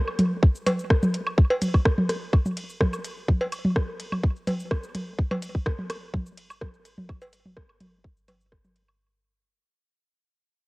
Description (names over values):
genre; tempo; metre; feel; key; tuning
techno; 126 BPM; 4/4; straight; none; none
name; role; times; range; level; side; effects
electronic woodblock, toms and cowbell; percussion; 0.1-9.0 s; none; -26 LUFS; equal; cassette tape
booming analog drum machine; drums; 0.2-8.9 s; hi-hat, ride cymbal, rim click, shaker; -32 LUFS; equal; cassette tape
electronic kick drum; drums; 0.4-8.6 s; none; -20 LUFS; equal; cassette tape
room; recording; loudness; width
light reverb, digital ambience; home recording on cassette; -23 LUFS; side -24 dB against mid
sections
0.0-9.0 A section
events
drop 0.0-9.0; fade-out 1.4-9.0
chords
none